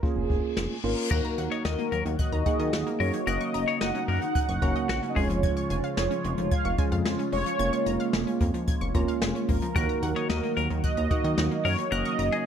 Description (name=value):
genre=synth-pop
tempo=111 BPM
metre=4/4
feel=straight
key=Eb minor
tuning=A4 = 441 Hz
part: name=mellow synth brass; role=melody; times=0.0-12.5 s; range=Ab4 to Gb5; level=-31 LUFS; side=right 2 dB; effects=chorus, ping-pong delay
part: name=tine electric piano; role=accompaniment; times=0.0-12.5 s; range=Ab3 to Ab4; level=-32 LUFS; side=right 3 dB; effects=medium stereo tremolo
part: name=jazz brush drum kit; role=drums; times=0.0-12.4 s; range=crash cymbal, hi-hat, kick drum, snare drum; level=-29 LUFS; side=left 1 dB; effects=none
part: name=reverse cymbal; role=sound effects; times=0.3-1.1 s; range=none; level=-38 LUFS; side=left 7 dB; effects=none
part: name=chorused synth bass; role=bass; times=0.2-12.3 s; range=F1 to Eb3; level=-30 LUFS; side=equal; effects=none
part: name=twelve-string electric guitar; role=second line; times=1.1-5.3, 9.8-12.4 s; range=Gb4 to Eb5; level=-32 LUFS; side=left 7 dB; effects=ping-pong delay
part: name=phased analog pad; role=sustained chords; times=1.1-12.5 s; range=Db3 to Gb4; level=-33 LUFS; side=equal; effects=phaser, chorus
part: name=wide unison pluck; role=arpeggios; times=1.1-12.4 s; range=Eb3 to Ab6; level=-36 LUFS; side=left 2 dB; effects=ping-pong delay
room=light reverb, small room ambience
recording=none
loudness=-24 LUFS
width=side -8 dB against mid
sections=0.0-1.1 A section; 1.1-12.5 B section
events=reverse cymbal 0.3-1.1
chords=0.0 Bbm7/F; 1.1 Ebm; 3.3 Gb6; 5.2 Db/F; 7.6 Bbm7/F; 9.8 Ebm; 11.9 Gb6